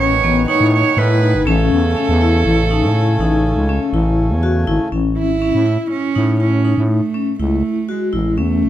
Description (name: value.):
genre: contemporary instrumental, chamber music in an uneven meter.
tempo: 122 BPM.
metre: 7/4.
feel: straight.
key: A lydian.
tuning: A4 = 440 Hz.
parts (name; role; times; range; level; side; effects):
warm cello; melody; 0.0-8.7 s; G#3 to C#5; -19 LUFS; right 6 dB; none.
hand-pumped harmonium; sustained chords; 0.0-4.9 s; C#3 to G#5; -24 LUFS; right 1 dB; none.
vibraphone with medium hard mallets; arpeggios; 0.0-8.7 s; B3 to F#4; -19 LUFS; left 4 dB; none.
growling FM bass; bass; 0.0-8.7 s; F#1 to A2; -17 LUFS; equal; none.
room: light reverb.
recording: close, detailed microphones.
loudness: -13 LUFS.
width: side -12 dB against mid.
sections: 0.0-4.9 A section; 4.9-8.7 B section.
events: none.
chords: 0.0 G#m; 1.5 Amaj7; 4.9 A.